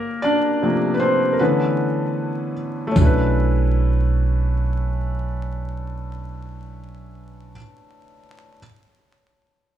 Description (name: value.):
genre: lo-fi hip hop.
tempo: 77 BPM.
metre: 4/4.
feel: swing 56% on 16ths.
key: B minor.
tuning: A4 = 440 Hz.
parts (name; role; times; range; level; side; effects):
felt-muted upright piano; accompaniment; 0.0-8.6 s; C3 to D5; -21 LUFS; left 1 dB; none.
upright bass; bass; 3.0-7.5 s; B1; -21 LUFS; right 2 dB; none.
electronic kick drum; drums; 3.0-3.2 s; none; -15 LUFS; right 1 dB; vintage 12-bit sampler grit.
tambourine; percussion; 3.0-3.3 s; none; -45 LUFS; left 7 dB; none.
room: small room ambience.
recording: vinyl crackle.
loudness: -18 LUFS.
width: side -10 dB against mid.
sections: 0.0-3.0 A section; 3.0-6.1 B section.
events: break 0.0-3.0; felt piano solo 0.0-3.0.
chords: 0.0 Gm11 (rootless); 1.4 Bm11.